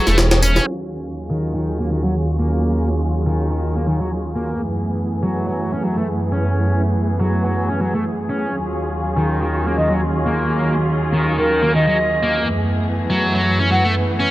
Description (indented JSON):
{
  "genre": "breakbeat, breaks",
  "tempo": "122 BPM",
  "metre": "4/4",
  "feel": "swing 55% on 16ths",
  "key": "unclear",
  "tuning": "A4 = 441 Hz",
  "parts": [
    { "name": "warm studio string section", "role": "sustained chords", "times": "0.0-14.3 s", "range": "Eb2 to Cb5", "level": "-19 LUFS", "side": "equal", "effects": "low-pass filter" },
    { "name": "distorted electric guitar", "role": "riff", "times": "0.0-14.3 s", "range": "Eb3 to Db4", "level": "-22 LUFS", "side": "equal", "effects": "distortion, low-pass filter, dub echo" },
    { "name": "dark detuned saw bass", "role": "bass", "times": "0.1-0.6 s", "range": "Fb1", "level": "-16 LUFS", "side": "equal", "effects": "tube saturation" },
    { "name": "breakbeat sampler-style drum kit", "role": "drums", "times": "0.1-0.7 s", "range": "hi-hat, snare drum", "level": "-19 LUFS", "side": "equal", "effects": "none" },
    { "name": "tambourine", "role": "drums", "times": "0.1-0.6 s", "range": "none", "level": "-26 LUFS", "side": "left 4 dB", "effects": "none" },
    { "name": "silver concert flute", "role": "melody", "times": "9.8-13.8 s", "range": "Bb4 to Gb5", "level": "-22 LUFS", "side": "equal", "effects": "small speaker sound, dub echo" }
  ],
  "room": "light reverb, digital ambience",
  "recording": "low-pass filter",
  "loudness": "-16 LUFS",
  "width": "side -16 dB against mid",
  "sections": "0.7-14.3 A section",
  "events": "filter sweep on distorted electric guitar 0.7-14.3; filter sweep on string section 0.7-14.3; filter sweep 0.7-14.3",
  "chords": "0.0 Gbm11; 0.7 Ebm11; 4.6 Gbm11; 8.5 Ebm11; 12.5 Gbm11"
}